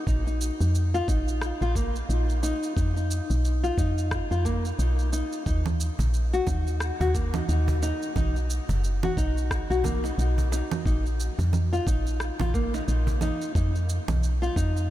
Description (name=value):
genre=organic downtempo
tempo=89 BPM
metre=4/4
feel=swing 58% on 16ths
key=unclear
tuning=A4 = 439 Hz
part: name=nylon-string guitar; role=arpeggios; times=0.0-14.9 s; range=Bb3 to Gb4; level=-30 LUFS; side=left 2 dB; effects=ping-pong delay
part: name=woody FM bass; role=bass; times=0.1-14.9 s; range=F#1 to F2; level=-25 LUFS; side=equal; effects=sidechain pumping
part: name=electronic kick drum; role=drums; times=0.1-14.7 s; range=none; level=-28 LUFS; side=equal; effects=studio reverb
part: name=electronic shaker, rim click and congas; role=drums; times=0.1-14.9 s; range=none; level=-35 LUFS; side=right 4 dB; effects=studio reverb
part: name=cajon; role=percussion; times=6.0-14.9 s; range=none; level=-38 LUFS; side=right 2 dB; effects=none
room=light reverb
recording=none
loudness=-23 LUFS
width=side -14 dB against mid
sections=0.0-14.9 A section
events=none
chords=0.1 Bb5; 2.8 B(#11); 5.5 Eb5; 8.2 B; 10.9 Bb5; 13.6 B(#11)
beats=| 0.07 0.75 1.42 2.09 | 2.77 3.44 4.12 4.79 | 5.46 6.14 6.81 7.49 | 8.16 8.84 9.51 10.18 | 10.86 11.53 12.21 12.88 | 13.55 14.23